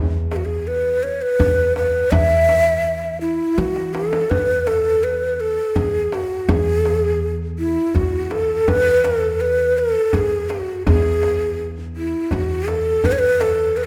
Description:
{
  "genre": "Persian modal ensemble",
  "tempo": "82 BPM",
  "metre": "3/4",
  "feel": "straight",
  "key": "E dastgah mahur",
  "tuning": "A4 = 440 Hz",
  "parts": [
    { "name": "upright bass", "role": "bass", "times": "0.0-13.9 s", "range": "E2 to E3", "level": "-26 LUFS", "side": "equal", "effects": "none" },
    { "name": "breathy mellow ney", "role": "melody", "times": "0.3-13.9 s", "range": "E4 to E5", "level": "-20 LUFS", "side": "equal", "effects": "none" },
    { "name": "tombak", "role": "percussion", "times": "0.3-13.9 s", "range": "none", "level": "-28 LUFS", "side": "equal", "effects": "none" }
  ],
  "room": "moderate concert hall reverb, RT60 2.2 s",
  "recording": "none",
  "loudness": "-19 LUFS",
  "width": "mono",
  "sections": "0.0-4.3 A section; 4.3-13.9 B section",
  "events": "drum fill 3.6-4.3",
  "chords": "none"
}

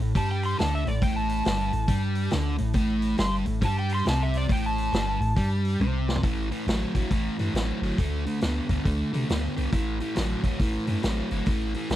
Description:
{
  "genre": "blues rock power trio and southern rock",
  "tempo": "138 BPM",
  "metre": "4/4",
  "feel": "swing 64% on 8ths",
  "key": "A minor",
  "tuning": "A4 = 436 Hz",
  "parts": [
    { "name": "sludgy distorted guitar", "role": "riff", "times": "0.0-12.0 s", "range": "G2 to B3", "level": "-28 LUFS", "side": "equal", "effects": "overdrive" },
    { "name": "punchy sub bass", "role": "bass", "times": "0.0-12.0 s", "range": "G1 to C3", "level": "-28 LUFS", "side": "equal", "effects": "none" },
    { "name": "vintage drum kit", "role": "drums", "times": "0.0-12.0 s", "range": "hi-hat, kick drum, snare drum, toms", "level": "-28 LUFS", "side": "equal", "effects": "none" },
    { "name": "overdriven slide guitar", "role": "melody", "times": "0.2-5.5 s", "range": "D5 to C6", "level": "-30 LUFS", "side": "equal", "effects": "none" }
  ],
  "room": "light reverb",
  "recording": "dry, close 1970s-style studio recording",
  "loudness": "-23 LUFS",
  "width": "side -13 dB against mid",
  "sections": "0.0-6.2 A section; 6.2-12.0 B section",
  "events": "electric slide guitar solo 0.0-6.2; drum fill 5.8-6.2",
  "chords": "0.0 Am; 6.2 A5; 8.0 D5; 9.7 A5"
}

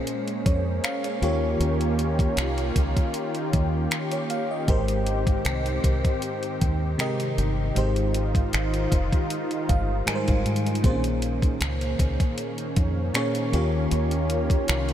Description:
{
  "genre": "contemporary R&B",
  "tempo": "78 BPM",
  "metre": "4/4",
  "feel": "swing 54% on 16ths",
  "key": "Ab major",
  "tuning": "A4 = 441 Hz",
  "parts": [
    { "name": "FM electric piano with soft pad layer", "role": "accompaniment", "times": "0.0-14.9 s", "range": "Ab2 to Ab5", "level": "-28 LUFS", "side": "equal", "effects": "chorus" },
    { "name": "lush unison pad", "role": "sustained chords", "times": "0.0-14.9 s", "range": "Eb3 to G4", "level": "-30 LUFS", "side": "right 1 dB", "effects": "chorus" },
    { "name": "clean 12-bit digital drum machine", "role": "drums", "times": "0.1-14.9 s", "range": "finger snaps, hi-hat, kick drum", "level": "-27 LUFS", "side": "equal", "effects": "none" },
    { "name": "deep dub fingered electric bass", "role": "bass", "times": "0.5-14.9 s", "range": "F1 to Ab2", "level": "-26 LUFS", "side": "equal", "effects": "none" }
  ],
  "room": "moderate huge ambient reverb, RT60 8.8 s",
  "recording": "dreamy mix soaked in reverb",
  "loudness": "-22 LUFS",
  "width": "side -10 dB against mid",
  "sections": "0.0-14.9 A section",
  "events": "FM electric piano fill 9.3-10.8",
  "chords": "0.0 Bbm7; 1.2 Eb7; 4.7 Abmaj7; 7.8 Fm9; 10.8 Bbm7; 13.5 Eb7"
}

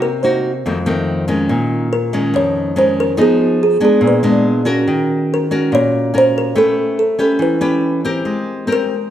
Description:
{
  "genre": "bossa nova",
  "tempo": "142 BPM",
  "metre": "4/4",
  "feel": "straight",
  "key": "unclear",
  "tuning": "A4 = 444 Hz",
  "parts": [
    { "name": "kalimba", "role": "melody", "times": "0.0-9.1 s", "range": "Ab4 to Db5", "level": "-16 LUFS", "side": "right 1 dB", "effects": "none" },
    { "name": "nylon-string guitar", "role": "accompaniment", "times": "0.0-9.1 s", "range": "F2 to B4", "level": "-15 LUFS", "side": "left 1 dB", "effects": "none" }
  ],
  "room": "wet large studio reverb, RT60 1.2 s",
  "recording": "none",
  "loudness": "-13 LUFS",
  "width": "side -11 dB against mid",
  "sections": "0.0-1.5 A section; 1.5-9.1 B section",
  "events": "none",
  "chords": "0.0 Cm7b5; 0.6 F7; 1.5 Bbm7; 3.2 Fm7b5; 4.0 Bb7b9; 4.9 Ebm7; 6.6 A9; 8.2 Abmaj9"
}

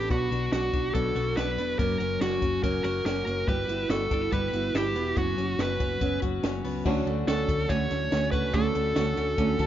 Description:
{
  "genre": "jangly indie pop",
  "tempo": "142 BPM",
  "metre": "4/4",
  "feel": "straight",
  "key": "unclear",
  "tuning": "A4 = 440 Hz",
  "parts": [
    { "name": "dark smooth lead guitar", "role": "melody", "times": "0.0-9.7 s", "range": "F#4 to C#5", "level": "-29 LUFS", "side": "right 1 dB", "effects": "overdrive, ping-pong delay" },
    { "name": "fingerpicked steel-string acoustic guitar", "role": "accompaniment", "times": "0.0-9.7 s", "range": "B2 to F#4", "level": "-32 LUFS", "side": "right 6 dB", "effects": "none" },
    { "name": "twelve-string electric guitar", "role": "arpeggios", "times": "0.0-9.7 s", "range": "F#2 to A4", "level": "-33 LUFS", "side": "left 6 dB", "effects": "none" },
    { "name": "hollow-body short-scale fingered electric bass", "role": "bass", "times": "0.0-9.7 s", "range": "E1 to D2", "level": "-33 LUFS", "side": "left 1 dB", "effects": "none" },
    { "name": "compact cocktail drum kit", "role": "drums", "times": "0.1-9.7 s", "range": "crash cymbal, hi-hat, kick drum, snare drum", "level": "-31 LUFS", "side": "equal", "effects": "none" },
    { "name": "dark upright piano", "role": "accompaniment", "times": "6.9-9.7 s", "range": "D4 to A5", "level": "-36 LUFS", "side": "left 2 dB", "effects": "none" }
  ],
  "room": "light reverb",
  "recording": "rough home demo mix, nothing above 7.5 kHz",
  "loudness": "-24 LUFS",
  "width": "side -11 dB against mid",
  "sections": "0.0-6.9 A section; 6.9-9.7 B section",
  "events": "upright piano fill 9.4",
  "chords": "0.1 Bm; 1.8 F#; 3.5 Emadd9/G; 5.2 F#sus4; 6.9 Dmaj7"
}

